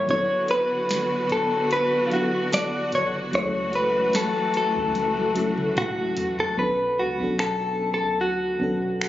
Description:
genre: contemporary R&B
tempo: 74 BPM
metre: 4/4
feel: swing 54% on 16ths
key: B minor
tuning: A4 = 439 Hz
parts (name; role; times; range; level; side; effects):
- direct-recorded clean electric guitar; melody; 0.0-9.1 s; E#4 to D5; -23 LUFS; left 1 dB; spring reverb, tape echo
- FM electric piano with tremolo; accompaniment; 0.0-9.1 s; F#3 to Bb4; -30 LUFS; equal; none
- clear studio string section; sustained chords; 0.0-6.5 s; D3 to F#4; -29 LUFS; equal; none
- soft 808-style bass; bass; 0.0-9.1 s; D1 to D2; -39 LUFS; equal; none
- booming analog drum machine; drums; 0.1-9.1 s; finger snaps, hi-hat, kick drum, snare drum, toms; -31 LUFS; equal; none
- soft synth bell; texture; 0.5-3.7 s; B4 to A5; -36 LUFS; equal; none
room: light reverb, digital ambience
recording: recorded on a phone in the room, club reverb, nothing above 7.5 kHz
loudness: -21 LUFS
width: side -13 dB against mid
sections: 0.0-6.6 A section; 6.6-9.1 B section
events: drum fill 5.0-6.6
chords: 0.1 D6; 3.3 F#m7/C#; 6.6 Bm9

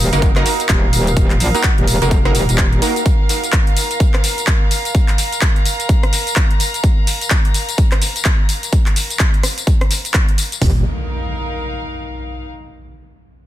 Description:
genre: bass house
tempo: 127 BPM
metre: 4/4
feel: swing 60% on 16ths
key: Eb minor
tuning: A4 = 444 Hz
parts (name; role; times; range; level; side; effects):
- metallic wobble bass; bass; 0.0-2.8, 10.6-10.8 s; Eb1 to Bb1; -16 LUFS; equal; chorus, overdrive, sidechain pumping
- rich chamber string section; texture; 0.0-12.5 s; Eb4 to Bb5; -25 LUFS; right 2 dB; sidechain pumping
- orchestra-hit-like synth stab; stabs; 0.1-3.0 s; Bb3 to Bb4; -22 LUFS; right 2 dB; built-in reverb, sidechain pumping, tape echo
- big-room dance drum kit; drums; 0.1-10.6 s; handclaps, hi-hat, rim click, tambourine; -19 LUFS; left 1 dB; overdrive, studio reverb
- big-room dance drum kit; drums; 0.2-10.7 s; hi-hat, kick drum, toms; -14 LUFS; equal; overdrive, studio reverb
- impact; sound effects; 10.6-12.5 s; none; -26 LUFS; equal; none
room: little or no reverb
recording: dense, heavily limited modern master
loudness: -13 LUFS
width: side -13 dB against mid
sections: 0.0-10.6 A section; 10.6-12.5 B section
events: fade-out on string section 0.0-10.6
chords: 0.0 Ebm; 3.1 Bb5; 10.6 Eb5

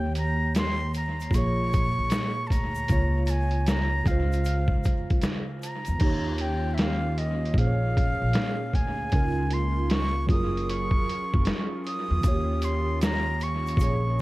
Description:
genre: lo-fi hip hop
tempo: 77 BPM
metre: 4/4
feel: swing 66% on 16ths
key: unclear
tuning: A4 = 440 Hz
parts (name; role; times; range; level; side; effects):
- breathy concert flute; melody; 0.0-14.2 s; Eb5 to Eb6; -31 LUFS; equal; analog delay
- warbly lo-fi synth keys; accompaniment; 0.0-14.2 s; Bb2 to Db5; -31 LUFS; right 2 dB; chorus, cassette tape, analog delay
- upright bass; bass; 0.0-14.2 s; Gb1 to Fb2; -27 LUFS; equal; none
- trip hop sampler-style drum kit; drums; 0.2-14.0 s; crash cymbal, hi-hat, kick drum, snare drum; -27 LUFS; equal; none
- egg shaker; percussion; 0.2-6.0, 12.2-14.2 s; none; -50 LUFS; left 8 dB; none
- hollow soft pad; sustained chords; 6.0-14.2 s; Db3 to Bb4; -36 LUFS; left 1 dB; chorus
room: light reverb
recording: echo-heavy mix, vinyl crackle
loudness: -23 LUFS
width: side -19 dB against mid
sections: 0.0-6.0 A section; 6.0-14.2 A section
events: break 0.0-6.0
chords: 0.0 Eb7; 1.3 Bbm7; 2.9 Db6; 4.1 Dbmaj7; 6.0 Eb7; 7.6 Bbm7; 9.1 Db6; 10.3 Gbmaj9; 12.2 Eb7

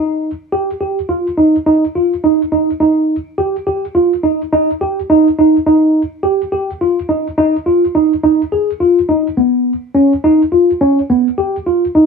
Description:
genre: progressive instrumental, progressive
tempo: 105 BPM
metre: 5/4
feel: straight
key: unclear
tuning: A4 = 440 Hz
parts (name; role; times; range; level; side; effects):
- mellow tine electric piano; solo; 0.0-12.1 s; Cb4 to Ab4; -11 LUFS; right 1 dB; lush chorus
room: moderate studio reverb, RT60 0.6 s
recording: none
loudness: -11 LUFS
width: side -5 dB against mid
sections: 0.0-8.5 A section; 8.5-12.1 B section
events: none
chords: none

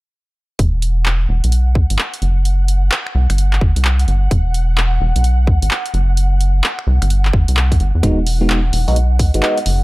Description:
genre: UK garage, two-step garage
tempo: 129 BPM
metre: 4/4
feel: swing 64% on 16ths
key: unclear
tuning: A4 = 439 Hz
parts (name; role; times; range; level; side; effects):
- ethereal airy pad; sustained chords; 1.0-9.8 s; F#5; -29 LUFS; left 1 dB; ensemble chorus, built-in reverb, sidechain pumping
- rubbery square bass; bass; 0.6-9.8 s; E1 to E2; -14 LUFS; equal; sidechain pumping
- electronic kick drum; drums; 0.6-9.3 s; none; -15 LUFS; equal; none
- punchy analog drum machine; drums; 0.6-9.8 s; finger snaps, handclaps, hi-hat; -21 LUFS; equal; overdrive
- overdriven tine electric piano; stabs; 8.0-9.6 s; G#3 to F#4; -19 LUFS; equal; phaser, tape echo
room: little or no reverb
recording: none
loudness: -13 LUFS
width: side -20 dB against mid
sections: 0.6-9.8 A section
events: filter sweep on analog synth bass 0.6-9.8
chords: 0.6 Esus2; 2.5 N.C.; 3.1 C5; 4.3 Esus2; 6.2 N.C.; 6.9 C; 8.0 Emaj9

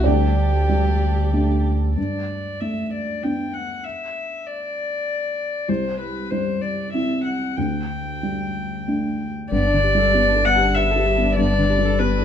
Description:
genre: neoclassical piano and strings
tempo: 96 BPM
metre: 3/4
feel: rubato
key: G major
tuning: A4 = 440 Hz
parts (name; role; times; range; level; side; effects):
- warm violin; melody; 0.0-12.2 s; G4 to G5; -23 LUFS; left 3 dB; none
- felt-muted upright piano; accompaniment; 0.0-12.2 s; C2 to D5; -23 LUFS; right 1 dB; none
- warm viola; accompaniment; 0.0-1.7, 9.5-12.2 s; B3 to A4; -29 LUFS; right 4 dB; none
- dark chamber string section; sustained chords; 0.0-2.0, 9.5-12.2 s; G3 to D5; -29 LUFS; left 2 dB; none
- warm sub bass; bass; 0.0-2.0, 9.5-12.2 s; G1 to D2; -20 LUFS; equal; none
room: moderate recital hall reverb, RT60 1.3 s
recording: minimal, uncompressed stereo recording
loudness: -19 LUFS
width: side -8 dB against mid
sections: 0.0-2.0 A section; 2.0-9.5 B section; 9.5-12.2 C section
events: none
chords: 0.0 Dsus4; 2.0 Gadd9; 5.7 C; 7.6 Dsus4; 9.5 Gadd9

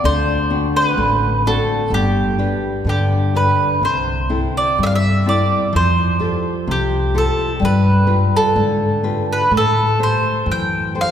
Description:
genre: fado-style ballad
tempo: 63 BPM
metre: 2/4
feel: rubato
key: unclear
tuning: A4 = 438 Hz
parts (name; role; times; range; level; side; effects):
- mandolin; melody; 0.0-11.1 s; G4 to G5; -18 LUFS; right 1 dB; none
- nylon-string guitar; accompaniment; 0.0-11.1 s; C3 to C5; -21 LUFS; left 2 dB; none
- upright bass; bass; 0.0-11.1 s; G1 to A2; -19 LUFS; equal; none
room: wet church reverb, RT60 3.4 s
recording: recorded in a church or concert hall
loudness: -14 LUFS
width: side -9 dB against mid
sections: 0.0-11.1 A section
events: none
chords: 0.0 D7; 1.9 G; 3.8 C6; 5.7 Fadd9; 7.6 G7; 9.5 Am7

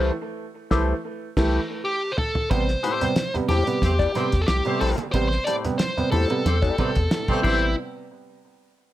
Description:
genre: funk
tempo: 91 BPM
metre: 4/4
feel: straight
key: A minor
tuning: A4 = 440 Hz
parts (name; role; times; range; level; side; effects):
- mellow electric guitar; accompaniment; 0.0-7.6 s; A3 to D5; -27 LUFS; left 6 dB; wah
- warm upright piano; stabs; 0.0-7.7 s; A2 to B3; -27 LUFS; right 4 dB; tape echo
- round analog bass; bass; 0.0-7.8 s; A1 to E2; -24 LUFS; equal; none
- cloth-damped thuddy drum kit; drums; 0.7-7.6 s; crash cymbal, hi-hat, kick drum, snare drum, toms; -26 LUFS; equal; none
- dark smooth lead guitar; melody; 1.8-7.7 s; E4 to D5; -26 LUFS; equal; overdrive
- congas; percussion; 2.5-7.8 s; none; -32 LUFS; right 4 dB; none
- dark horn section; second line; 3.8-7.7 s; A3 to C5; -30 LUFS; left 1 dB; none
room: light reverb, small room ambience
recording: none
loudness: -20 LUFS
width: side -14 dB against mid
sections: 0.0-2.5 A section; 2.5-7.8 B section; 7.8-8.9 C section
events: band accent 0.0-2.5; drum fill 1.2-2.5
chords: 0.0 C6; 2.5 Am7; 7.8 N.C.

